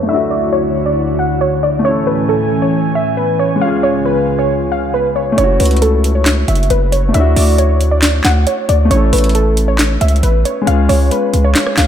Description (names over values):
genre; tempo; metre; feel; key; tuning
hip hop, trap; 136 BPM; 4/4; half-time; F# minor; A4 = 438 Hz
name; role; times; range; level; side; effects
warbly dusty pluck; melody; 0.0-11.9 s; A4 to F#5; -16 LUFS; equal; chorus, low-pass filter, diffuse ambient delay
dark baby grand piano; accompaniment; 0.0-11.9 s; G#3 to A4; -19 LUFS; left 3 dB; low-pass filter
airy breathy pad; sustained chords; 0.0-5.4 s; C#2 to G#5; -18 LUFS; right 1 dB; chorus, low-pass filter
distorted 808-style bass; bass; 5.4-11.9 s; F#1 to D2; -12 LUFS; equal; distortion
trap drum kit; drums; 5.4-11.9 s; handclaps, hi-hat, rim click, snare drum; -17 LUFS; equal; none
room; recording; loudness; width
moderate lush hall reverb, RT60 1.9 s; dreamy mix soaked in reverb; -11 LUFS; side -9 dB against mid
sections
0.0-5.4 A section; 5.4-11.9 B section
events
filter sweep 0.0-5.4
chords
0.1 Dadd9; 1.8 Amaj7; 3.6 C#; 5.4 F#m7; 7.1 Dadd9; 8.9 A; 10.7 C#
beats
| 0.09 0.53 0.97 1.41 | 1.85 2.29 2.73 3.17 | 3.61 4.05 4.50 4.94 | 5.38 5.82 6.26 6.70 | 7.14 7.58 8.03 8.47 | 8.91 9.35 9.79 10.23 | 10.67 11.11 11.55